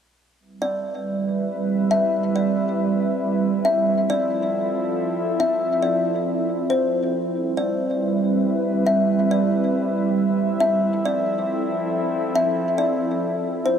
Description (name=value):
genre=hip hop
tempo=138 BPM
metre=4/4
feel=half-time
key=C major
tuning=A4 = 441 Hz
part: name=warbly tape-like pad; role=sustained chords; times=0.7-13.8 s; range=F3 to E5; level=-21 LUFS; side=right 2 dB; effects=chorus, built-in reverb
part: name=kalimba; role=melody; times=0.6-13.8 s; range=C5 to E5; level=-23 LUFS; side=left 2 dB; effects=tape echo
room=moderate huge ambient reverb, RT60 3.9 s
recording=dark, warm production, lossy compression artefacts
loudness=-19 LUFS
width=side -8 dB against mid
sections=0.4-13.8 A section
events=none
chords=0.4 Cmaj7; 3.9 Fmaj7; 7.4 Cmaj7; 10.8 Fmaj7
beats=| 0.40 0.83 1.26 1.70 | 2.13 2.57 3.00 3.44 | 3.87 4.31 4.74 5.18 | 5.61 6.05 6.48 6.92 | 7.35 7.79 8.22 8.66 | 9.09 9.53 9.96 10.39 | 10.83 11.27 11.70 12.13 | 12.57 13.00 13.44